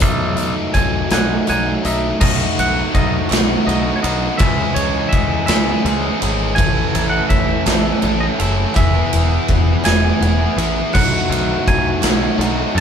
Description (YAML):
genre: indie rock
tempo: 55 BPM (dotted quarters)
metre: 6/8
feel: straight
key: unclear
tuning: A4 = 439 Hz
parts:
  - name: biting overdriven guitar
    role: riff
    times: 0.0-12.8 s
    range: E3 to A4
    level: -20 LUFS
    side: equal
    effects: none
  - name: modern bright picked electric bass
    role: bass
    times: 0.0-12.8 s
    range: E1 to F#2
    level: -21 LUFS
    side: equal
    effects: none
  - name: big rock drum kit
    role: drums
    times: 0.0-12.8 s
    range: crash cymbal, hi-hat, kick drum, ride cymbal, snare drum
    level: -18 LUFS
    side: equal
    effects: none
  - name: group handclap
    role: percussion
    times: 0.0-12.2 s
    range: none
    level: -33 LUFS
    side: right 7 dB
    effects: none
  - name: twangy electric guitar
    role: melody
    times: 0.7-12.8 s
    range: C#5 to G#5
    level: -23 LUFS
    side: right 1 dB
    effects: none
room: light reverb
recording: band playing live in one room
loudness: -14 LUFS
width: side -7 dB against mid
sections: 0.0-2.2 A section; 2.2-12.8 B section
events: clean electric guitar solo 0.0-2.2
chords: 0.0 B7; 4.4 C#m; 6.6 A; 8.8 E; 10.9 B7